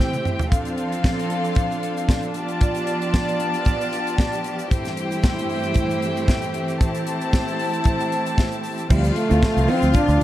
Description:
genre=disco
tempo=114 BPM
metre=4/4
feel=straight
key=D dorian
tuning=A4 = 439 Hz
part: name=clear studio string section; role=second line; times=0.0-10.2 s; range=C4 to A5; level=-25 LUFS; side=left 1 dB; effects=none
part: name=clear chamber string section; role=sustained chords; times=0.0-10.2 s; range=G2 to G4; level=-27 LUFS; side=right 1 dB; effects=none
part: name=tight funk drum kit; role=drums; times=0.0-10.2 s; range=crash cymbal, hi-hat, kick drum, snare drum, toms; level=-22 LUFS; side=equal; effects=none
part: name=egg shaker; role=percussion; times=0.0-10.2 s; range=none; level=-45 LUFS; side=right 9 dB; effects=none
part: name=mellow trombone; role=melody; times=8.9-10.2 s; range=G3 to D4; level=-20 LUFS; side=right 1 dB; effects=none
part: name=clean electric guitar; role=accompaniment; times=8.9-10.1 s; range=F3 to E4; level=-28 LUFS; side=right 5 dB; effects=none
part: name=fingered electric bass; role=bass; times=8.9-10.2 s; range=C2 to D2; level=-19 LUFS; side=equal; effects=none
room=light reverb, small room ambience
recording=none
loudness=-19 LUFS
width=side -13 dB against mid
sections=0.0-8.9 A section; 8.9-10.2 B section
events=drum fill 0.0-0.5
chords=0.0 Am7; 0.5 Dm7; 2.4 G7; 4.7 C6/G; 6.8 Am7; 8.9 Dm9

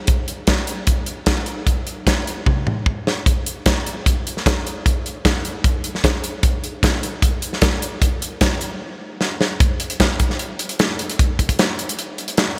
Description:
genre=rock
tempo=151 BPM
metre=4/4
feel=straight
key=none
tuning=none
part: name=modern studio drum kit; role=drums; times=0.1-12.5 s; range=hi-hat, kick drum, snare drum, toms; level=-20 LUFS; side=equal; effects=none
room=moderate huge ambient reverb, RT60 4.4 s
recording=none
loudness=-20 LUFS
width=mono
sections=0.0-9.6 A section; 9.6-12.6 B section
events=drum fill 2.5-3.3, 9.2-9.6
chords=none

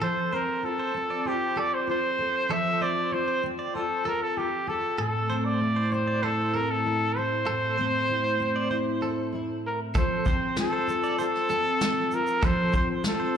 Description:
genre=acoustic pop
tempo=97 BPM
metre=4/4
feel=straight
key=F major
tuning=A4 = 440 Hz
part: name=warm trumpet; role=melody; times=0.0-13.4 s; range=G4 to E5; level=-27 LUFS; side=equal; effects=slapback echo, ping-pong delay
part: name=fingerpicked steel-string acoustic guitar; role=accompaniment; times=0.0-13.4 s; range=A2 to A4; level=-29 LUFS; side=equal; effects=double-tracked left and right, slapback echo
part: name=direct-recorded clean electric guitar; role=arpeggios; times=0.0-13.3 s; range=A4 to D5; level=-34 LUFS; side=right 5 dB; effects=tremolo, slapback echo
part: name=vintage brush drum kit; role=drums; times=9.9-13.2 s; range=kick drum, shaker, snare drum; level=-28 LUFS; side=equal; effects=none
room=light reverb, small room ambience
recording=live gig heard through the venue's PA, club reverb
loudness=-24 LUFS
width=side -8 dB against mid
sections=0.0-9.9 A section; 9.9-13.4 B section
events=none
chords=0.0 F; 5.0 Am; 9.9 F

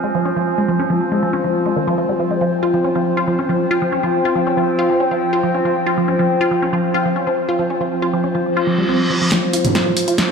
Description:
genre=driving peak-time techno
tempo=139 BPM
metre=4/4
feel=straight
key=F minor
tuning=A4 = 441 Hz
part: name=resonant blip pluck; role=riff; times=0.0-10.3 s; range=Eb3 to F4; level=-19 LUFS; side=equal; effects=phaser, tape echo
part: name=overtone-sweeping drone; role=drone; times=0.0-10.3 s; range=F3 to C4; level=-22 LUFS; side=right 1 dB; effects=chorus, built-in reverb
part: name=warbly tape-like pad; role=texture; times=0.0-10.3 s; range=F4 to Ab5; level=-20 LUFS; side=left 1 dB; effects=chorus, built-in reverb
part: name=reverse cymbal and riser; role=sound effects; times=8.6-10.3 s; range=none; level=-24 LUFS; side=right 1 dB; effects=none
part: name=techno drum kit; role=drums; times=9.3-10.3 s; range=hi-hat, snare drum, toms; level=-17 LUFS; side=right 1 dB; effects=none
room=moderate huge ambient reverb, RT60 5.0 s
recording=played on a big sound system in a bare room, large studio reverb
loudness=-15 LUFS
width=side -5 dB against mid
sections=0.0-9.3 A section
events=reverse cymbal 8.6-9.3; drum fill 9.3-10.3; riser 9.3-10.3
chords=0.0 Fm; 9.3 F5

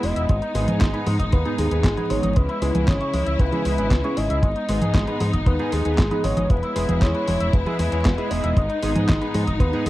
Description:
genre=italo disco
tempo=116 BPM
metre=4/4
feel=straight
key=G# minor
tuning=A4 = 440 Hz
part: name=soft octave-layered synth lead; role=melody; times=0.0-9.9 s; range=G#4 to D#5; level=-27 LUFS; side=left 1 dB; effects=chorus, cassette tape, tape echo
part: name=rich studio string section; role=sustained chords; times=0.0-9.9 s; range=G#3 to E4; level=-28 LUFS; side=left 2 dB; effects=none
part: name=electric guitar with an envelope filter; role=arpeggios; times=0.0-9.9 s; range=G#3 to E5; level=-33 LUFS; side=left 2 dB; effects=tape echo
part: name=chorused polysynth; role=stabs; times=0.0-9.9 s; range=G#2 to C#5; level=-28 LUFS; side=right 3 dB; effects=cassette tape
part: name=fingered electric bass with an envelope filter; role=bass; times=0.0-9.9 s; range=E1 to G#2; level=-25 LUFS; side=equal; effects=tube saturation
part: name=detuned 8-bit digital drum machine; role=drums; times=0.0-9.9 s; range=congas, handclaps, hi-hat, snare drum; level=-27 LUFS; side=equal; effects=overdrive
part: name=kick drum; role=drums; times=0.3-9.7 s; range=none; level=-18 LUFS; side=equal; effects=none
room=studio ambience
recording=dry, close 1970s-style studio recording, vinyl crackle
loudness=-19 LUFS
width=side -16 dB against mid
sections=0.0-9.9 A section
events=none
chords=0.3 G#m; 2.4 C#m; 4.4 G#m; 6.5 E; 8.6 G#m

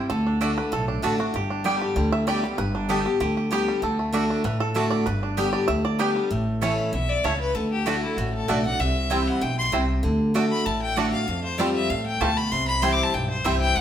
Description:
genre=bluegrass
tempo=193 BPM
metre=4/4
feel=straight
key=G major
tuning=A4 = 440 Hz
part: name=bluegrass banjo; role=melody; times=0.0-13.5 s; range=G3 to E5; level=-29 LUFS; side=right 3 dB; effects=none
part: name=picked steel-string acoustic guitar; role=accompaniment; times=0.0-13.8 s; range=F2 to G4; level=-26 LUFS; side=left 1 dB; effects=none
part: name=upright bass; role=bass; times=0.1-13.8 s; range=G1 to F2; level=-27 LUFS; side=equal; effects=none
part: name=mandolin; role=stabs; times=0.4-13.5 s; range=A3 to A5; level=-29 LUFS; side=right 4 dB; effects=none
part: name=clear fiddle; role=melody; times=6.9-13.8 s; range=E4 to D6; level=-26 LUFS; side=left 3 dB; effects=none
room=wet stone room reverb, RT60 1.1 s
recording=band playing live in one room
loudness=-21 LUFS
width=side -10 dB against mid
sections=0.0-6.3 A section; 6.3-13.8 A section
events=five-string banjo solo 0.0-6.3; fiddle solo 6.3-13.8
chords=0.1 D; 1.3 G; 3.8 D; 5.1 G; 6.3 A; 7.6 D; 8.8 C; 10.0 D; 11.3 Fadd9; 12.5 C

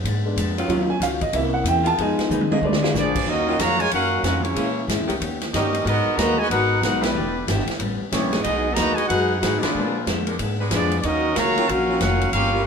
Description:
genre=jazz, big band swing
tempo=186 BPM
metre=4/4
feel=swing 63% on 8ths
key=Eb minor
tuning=A4 = 440 Hz
part: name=vintage hollow-body jazz guitar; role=accompaniment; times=0.0-12.6 s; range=G2 to Cb5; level=-28 LUFS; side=left 4 dB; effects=none
part: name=upright bass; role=bass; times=0.0-12.7 s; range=E1 to Bb2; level=-26 LUFS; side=equal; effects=none
part: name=swinging big-band drum kit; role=drums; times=0.1-12.4 s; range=crash cymbal, hi-hat, kick drum, ride cymbal, snare drum, toms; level=-26 LUFS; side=equal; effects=none
part: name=clear grand piano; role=accompaniment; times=0.3-3.2 s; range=Gb3 to A5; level=-22 LUFS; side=right 1 dB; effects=none
part: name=warm saxophone section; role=sustained chords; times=0.6-12.6 s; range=Db3 to B4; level=-29 LUFS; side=equal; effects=none
part: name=clear trumpet section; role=melody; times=3.0-12.6 s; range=G3 to Bb5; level=-22 LUFS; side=right 1 dB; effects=none
part: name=mellow trombone section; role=second line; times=3.0-12.7 s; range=G#2 to F#4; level=-26 LUFS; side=equal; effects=none
room=wet studio reverb, RT60 0.8 s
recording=band playing live in one room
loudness=-19 LUFS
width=side -6 dB against mid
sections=0.0-3.3 A section; 3.3-12.7 B section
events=grand piano solo 0.0-3.3; drum fill 2.3-3.0; band accent 7.0, 9.6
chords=0.0 Bb7b9; 0.7 Ebm9; 1.3 C7b9; 2.0 Fm7b5; 2.6 Bb7b9; 3.3 Ebm9; 4.6 Bbm7b5; 5.2 Eb7b13; 5.9 Abm9; 7.2 Em7; 7.8 A9; 8.4 B6; 9.7 Bb7b9; 11.0 Ebm9

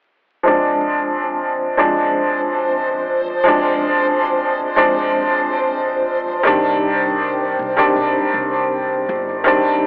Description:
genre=trip hop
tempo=80 BPM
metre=4/4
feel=straight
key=unclear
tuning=A4 = 441 Hz
part: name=bright upright piano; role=accompaniment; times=0.4-9.9 s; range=Eb3 to D4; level=-15 LUFS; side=equal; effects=harmonic tremolo, vintage 12-bit sampler grit, low-pass filter, cassette tape, tape echo
part: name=backwards swelling texture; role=texture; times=2.4-9.5 s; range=C5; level=-24 LUFS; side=equal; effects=built-in reverb, cassette tape
part: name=upright bass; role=bass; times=6.5-9.5 s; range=G1 to C2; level=-34 LUFS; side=equal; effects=none
room=moderate spring reverb, RT60 1.9 s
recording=home recording on cassette, vinyl crackle, telephone sound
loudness=-15 LUFS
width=side -36 dB against mid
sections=0.5-9.9 A section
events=none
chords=0.5 Dm7b5; 6.5 Cmadd9

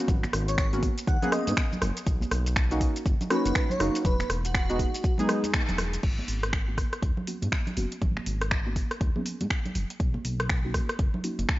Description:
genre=deep house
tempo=121 BPM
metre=4/4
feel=swing 61% on 16ths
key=G# minor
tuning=A4 = 440 Hz
part: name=deep mellow chord stab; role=stabs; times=0.0-11.6 s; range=G#3 to G#4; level=-31 LUFS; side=equal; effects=chorus, sidechain pumping, analog delay
part: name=smooth gliding synth bass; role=bass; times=0.1-11.5 s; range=E1 to G#2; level=-30 LUFS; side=equal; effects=tube saturation, sidechain pumping
part: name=deep house drum kit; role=drums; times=0.1-11.6 s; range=crash cymbal, finger snaps, hi-hat, rim click, shaker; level=-31 LUFS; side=equal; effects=studio reverb
part: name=electronic kick drum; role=drums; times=0.1-11.6 s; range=none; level=-27 LUFS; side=equal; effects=studio reverb
part: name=congas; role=percussion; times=0.1-11.5 s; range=none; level=-36 LUFS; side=right 2 dB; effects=none
part: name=airy dreamy lead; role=melody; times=0.5-5.1 s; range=F#4 to F#5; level=-34 LUFS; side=right 1 dB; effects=chorus, cassette tape, tape echo
room=digital ambience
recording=dry, gritty hardware recording, nothing above 7.6 kHz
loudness=-25 LUFS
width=side -16 dB against mid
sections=0.0-6.0 A section; 6.0-11.6 B section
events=drop 0.0-6.0; band accent 5.5; filter sweep on synth stab 6.0-11.6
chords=0.0 G#m11; 2.1 Bmaj7; 4.0 Emaj7; 6.0 G#m11; 10.0 Bmaj7

